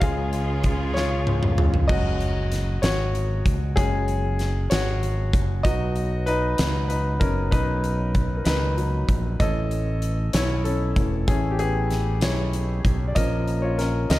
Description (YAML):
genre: six-eight pop ballad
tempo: 64 BPM (dotted quarters)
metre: 6/8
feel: straight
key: unclear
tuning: A4 = 440 Hz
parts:
  - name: clear grand piano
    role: accompaniment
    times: 0.0-14.2 s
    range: E3 to E#5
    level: -26 LUFS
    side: left 2 dB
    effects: none
  - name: bright studio string section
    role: sustained chords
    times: 0.0-1.9 s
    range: C#3 to G#4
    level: -32 LUFS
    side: right 2 dB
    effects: none
  - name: fretless electric bass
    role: bass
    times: 0.0-14.2 s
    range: E1 to C#2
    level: -25 LUFS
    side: equal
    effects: none
  - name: huge arena drum kit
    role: drums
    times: 0.0-14.2 s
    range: crash cymbal, hi-hat, kick drum, snare drum, toms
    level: -25 LUFS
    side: equal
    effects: none
room: studio ambience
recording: none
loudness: -21 LUFS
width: side -16 dB against mid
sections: 0.0-1.9 A section; 1.9-14.2 B section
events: grand piano solo 0.0-1.9, 1.9-14.2; drum fill 1.0-1.9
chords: 0.0 C#; 1.9 F#sus2; 5.6 B; 9.4 A; 13.2 A#m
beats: | 0.02 0.96 | 1.89 2.83 | 3.77 4.71 | 5.64 6.58 | 7.52 8.46 | 9.40 10.34 | 11.28 12.22 | 13.16 14.10